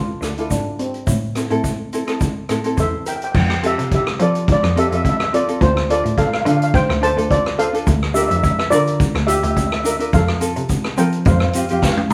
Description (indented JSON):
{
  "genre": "calypso",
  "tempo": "106 BPM",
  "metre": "4/4",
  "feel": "swing 53% on 16ths",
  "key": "F major",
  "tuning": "A4 = 439 Hz",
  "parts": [
    { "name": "steel pan", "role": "melody", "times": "0.0-12.0 s", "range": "C4 to A5", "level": "-22 LUFS", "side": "equal", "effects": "none" },
    { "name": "ukulele", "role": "accompaniment", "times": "0.0-12.1 s", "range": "C4 to E5", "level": "-26 LUFS", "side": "equal", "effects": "none" },
    { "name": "rich cello", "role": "bass", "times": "0.0-12.1 s", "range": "D2 to F3", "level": "-24 LUFS", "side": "equal", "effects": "none" },
    { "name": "street-band drum kit", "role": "drums", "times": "0.2-12.1 s", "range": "crash cymbal, hi-hat, kick drum, rim click, snare drum, toms", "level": "-23 LUFS", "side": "equal", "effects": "none" },
    { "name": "tube shaker", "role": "percussion", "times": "0.2-3.2, 7.9-12.0 s", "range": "none", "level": "-37 LUFS", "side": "equal", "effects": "none" }
  ],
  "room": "moderate large studio reverb, RT60 1.1 s",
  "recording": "band playing live in one room",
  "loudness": "-18 LUFS",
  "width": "mono",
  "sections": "0.0-3.3 A section; 3.3-12.1 B section",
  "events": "ukulele fill 2.5-3.3; drum fill 11.8-12.1",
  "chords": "0.0 Dm; 1.1 Am; 3.3 Fadd9; 5.6 Dm7; 7.9 Bb/D; 10.1 F; 11.3 Fsus2"
}